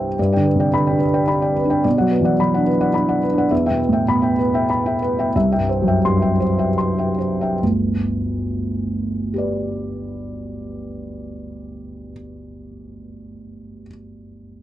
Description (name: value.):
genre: neoclassical minimalist piano.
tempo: 69-110 BPM.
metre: 3/4.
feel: rubato.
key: G major.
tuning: A4 = 440 Hz.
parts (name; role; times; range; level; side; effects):
felt-muted upright piano; solo; 0.0-14.6 s; G1 to C6; -18 LUFS; equal; none.
room: light reverb.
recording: dry, close 1970s-style studio recording.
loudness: -16 LUFS.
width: side -13 dB against mid.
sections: 0.2-7.6 A section; 7.6-12.8 B section.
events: slowing down 2.7-7.6.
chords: 0.2 G; 1.9 Bm; 3.5 Em; 5.3 C; 7.6 G.